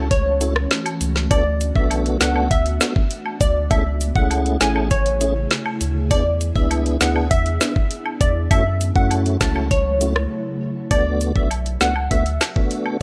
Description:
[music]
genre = dancehall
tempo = 100 BPM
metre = 4/4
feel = straight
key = unclear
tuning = A4 = 440 Hz
[part]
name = mellow tonewheel organ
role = accompaniment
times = 0.0-13.0 s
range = A3 to A4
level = -26 LUFS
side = equal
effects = chorus vibrato, fast rotary speaker, sidechain pumping
[part]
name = ethereal airy pad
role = sustained chords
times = 0.0-10.9 s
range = C#3 to G#4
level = -32 LUFS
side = equal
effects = ensemble chorus, built-in reverb, sidechain pumping
[part]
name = warm sub bass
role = bass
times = 0.0-12.4 s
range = A1 to F#2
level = -24 LUFS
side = equal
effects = none
[part]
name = glassy wavetable pluck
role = melody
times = 0.1-12.5 s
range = C#5 to A5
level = -26 LUFS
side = equal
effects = chorus, tape echo
[part]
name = island pop drum kit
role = drums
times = 0.1-12.8 s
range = hi-hat, kick drum, rim click, snare drum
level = -22 LUFS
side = equal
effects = vintage 12-bit sampler grit
[part]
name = cabasa and woodblock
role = percussion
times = 0.4-13.0 s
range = none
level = -32 LUFS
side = equal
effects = none
[sound]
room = digital ambience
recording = lossy compression artefacts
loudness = -19 LUFS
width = mono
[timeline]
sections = 0.0-10.9 A section; 10.9-13.0 B section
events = break 10.3-10.9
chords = 0.0 F#m7; 1.3 D6; 3.7 Amaj7; 6.1 E7; 8.5 F#m7; 10.9 D6

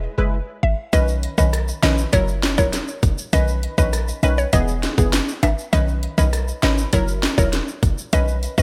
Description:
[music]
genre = dancehall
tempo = 100 BPM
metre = 4/4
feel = straight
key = B major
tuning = A4 = 442 Hz
[part]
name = mallet-like synth pluck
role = melody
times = 0.0-8.6 s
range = C#5 to E5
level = -28 LUFS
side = equal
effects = chorus, delay
[part]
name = punchy chord stab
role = accompaniment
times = 0.0-8.6 s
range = D#3 to B4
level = -28 LUFS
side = equal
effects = chorus
[part]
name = short 808-style bass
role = bass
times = 0.0-8.6 s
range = E1 to B1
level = -23 LUFS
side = equal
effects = none
[part]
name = island pop drum kit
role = drums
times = 0.9-8.6 s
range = hi-hat, kick drum, rim click, snare drum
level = -23 LUFS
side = equal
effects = none
[part]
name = tube shaker and timbales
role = percussion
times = 0.9-8.6 s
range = none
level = -33 LUFS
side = equal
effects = none
[sound]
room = little or no reverb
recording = none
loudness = -20 LUFS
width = mono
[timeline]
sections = 0.0-8.6 A section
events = none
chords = 0.0 E; 0.9 Badd9; 2.1 F#7; 3.3 Badd9; 4.5 E; 5.7 Badd9; 6.9 F#7

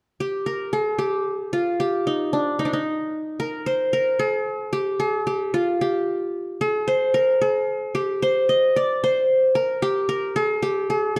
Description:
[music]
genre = arabic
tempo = 75 BPM (dotted quarters)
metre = 6/8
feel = straight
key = G maqam bayati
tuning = A4 = 440 Hz
[part]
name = qanun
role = solo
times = 0.2-11.2 s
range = D4 to Eb5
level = -23 LUFS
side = equal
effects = none
[sound]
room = moderate recital hall reverb, RT60 1.4 s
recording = dark, warm production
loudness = -23 LUFS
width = mono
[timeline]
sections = 0.2-11.2 A section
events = none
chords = none

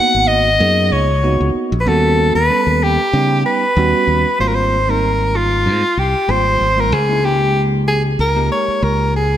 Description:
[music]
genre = electric jazz fusion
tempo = 95 BPM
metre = 4/4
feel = swing 54% on 16ths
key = Ab major from 4.4 s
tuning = A4 = 441 Hz
[part]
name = clear soprano saxophone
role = melody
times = 0.0-9.4 s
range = F4 to Gb5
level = -15 LUFS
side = left 1 dB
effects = none
[part]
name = bell-like tine electric piano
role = accompaniment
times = 0.0-9.2 s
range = G3 to A4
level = -21 LUFS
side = right 4 dB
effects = lush chorus
[part]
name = modern bright fingered electric bass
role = bass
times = 0.1-9.4 s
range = Ab1 to Db3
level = -17 LUFS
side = equal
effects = none
[sound]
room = moderate lush hall reverb, RT60 2.4 s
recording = bright 1980s-style digital production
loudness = -13 LUFS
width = side -11 dB against mid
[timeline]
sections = 0.0-4.4 A section; 4.4-9.4 B section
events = none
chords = 0.0 Db13sus4; 1.9 Eb7alt; 4.4 Abmaj13; 6.9 Db5

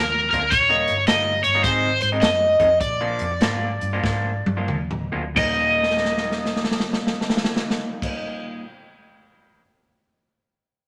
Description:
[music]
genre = electric blues shuffle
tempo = 86-108 BPM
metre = 4/4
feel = swing 65% on 8ths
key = Eb major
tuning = A4 = 440 Hz
[part]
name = cranked stack guitar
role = melody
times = 0.0-8.1 s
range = Bb4 to Eb5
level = -22 LUFS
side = equal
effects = overdrive, phaser
[part]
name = electric guitar through a small old amp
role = riff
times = 0.0-8.6 s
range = Eb2 to F4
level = -30 LUFS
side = equal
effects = none
[part]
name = vintage muted fingered electric bass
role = bass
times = 0.0-8.1 s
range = Eb1 to Ab2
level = -32 LUFS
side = equal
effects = none
[part]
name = swinging big-band drum kit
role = drums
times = 0.3-9.6 s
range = crash cymbal, hi-hat, kick drum, snare drum, toms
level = -27 LUFS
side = equal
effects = none
[sound]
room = wet studio reverb, RT60 0.8 s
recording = none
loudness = -21 LUFS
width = mono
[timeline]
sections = 0.0-5.4 A section; 5.4-8.1 B section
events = slowing down 0.5-5.4; drum fill 4.0-5.4, 5.7-8.0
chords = 0.0 Bb; 0.5 Eb7; 1.6 Ab7; 2.8 Bb7; 5.4 Eb

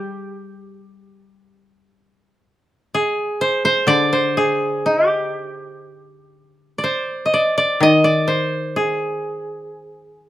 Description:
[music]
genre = japanese traditional, Japanese chamber music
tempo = 62 BPM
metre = 2/4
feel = rubato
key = G miyako bushi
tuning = A4 = 441 Hz
[part]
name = koto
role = melody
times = 0.0-10.3 s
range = G4 to Eb5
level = -18 LUFS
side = equal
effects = none
[part]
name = koto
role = accompaniment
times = 0.0-10.3 s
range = D3 to G3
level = -21 LUFS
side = left 2 dB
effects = none
[sound]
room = light reverb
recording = close, detailed microphones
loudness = -16 LUFS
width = side -13 dB against mid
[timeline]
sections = 0.0-10.3 A section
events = none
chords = none

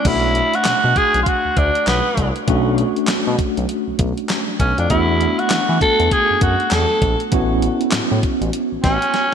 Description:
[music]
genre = R&B, new jack swing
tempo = 99 BPM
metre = 4/4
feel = swing 61% on 16ths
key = B minor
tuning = A4 = 439 Hz
[part]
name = raspy tenor saxophone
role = melody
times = 0.0-9.3 s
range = B3 to A4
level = -18 LUFS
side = equal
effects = ping-pong delay
[part]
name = bell-like tine electric piano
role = accompaniment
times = 0.0-9.3 s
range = A3 to C#5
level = -21 LUFS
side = right 1 dB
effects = medium stereo tremolo
[part]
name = smooth synth bass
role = bass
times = 0.1-9.0 s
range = A1 to E3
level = -21 LUFS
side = equal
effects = none
[part]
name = clean 12-bit digital drum machine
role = drums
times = 0.1-9.3 s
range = crash cymbal, handclaps, hi-hat, kick drum, snare drum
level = -21 LUFS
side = equal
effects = gated reverb
[sound]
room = moderate lush hall reverb, RT60 2.2 s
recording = bright 1980s-style digital production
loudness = -15 LUFS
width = side -7 dB against mid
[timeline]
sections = 0.1-9.3 A section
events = drum fill 9.1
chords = 0.1 Bm9; 4.9 E9sus4; 7.3 A69

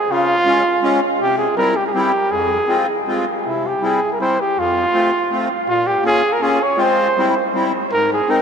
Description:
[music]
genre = alpine folk, alpine dance band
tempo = 162 BPM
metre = 3/4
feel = rubato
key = F harmonic minor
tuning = A4 = 440 Hz
[part]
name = mellow trumpet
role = melody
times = 0.0-8.4 s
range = E4 to Db5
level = -17 LUFS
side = right 2 dB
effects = analog delay
[part]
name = accordion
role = accompaniment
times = 0.1-8.4 s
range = F2 to F4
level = -19 LUFS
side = left 2 dB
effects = light tremolo tuning
[sound]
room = wet cathedral reverb, RT60 6.0 s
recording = dreamy mix soaked in reverb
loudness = -15 LUFS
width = side -6 dB against mid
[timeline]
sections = 0.0-8.4 A section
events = none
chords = 0.1 Db; 1.2 C; 2.3 Fm; 3.5 C; 4.6 F; 5.7 Bbm; 6.8 Fm; 7.2 C; 7.9 Abadd9

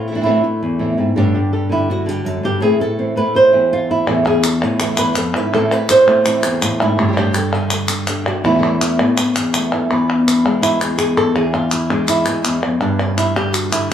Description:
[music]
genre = flamenco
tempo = 165 BPM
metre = 4/4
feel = straight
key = unclear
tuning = A4 = 440 Hz
[part]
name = flamenco guitar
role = melody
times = 0.0-13.9 s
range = E2 to C5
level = -15 LUFS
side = equal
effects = none
[part]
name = flamenco guitar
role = stabs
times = 0.0-9.9 s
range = E2 to G4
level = -22 LUFS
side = right 3 dB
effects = none
[part]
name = palmas hand claps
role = percussion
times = 4.1-13.9 s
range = none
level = -20 LUFS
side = left 1 dB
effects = none
[sound]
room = wet studio reverb, RT60 0.5 s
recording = band playing live in one room, lossy compression artefacts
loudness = -14 LUFS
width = side -9 dB against mid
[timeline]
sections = 0.0-9.9 A section; 9.9-13.9 B section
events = nylon-string guitar solo 9.9-13.9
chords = 0.0 Am; 1.2 Gsus2; 2.6 Am; 4.1 Esus4; 5.5 Am; 7.0 Gsus2; 8.4 Esus4; 9.9 E; 12.8 G5

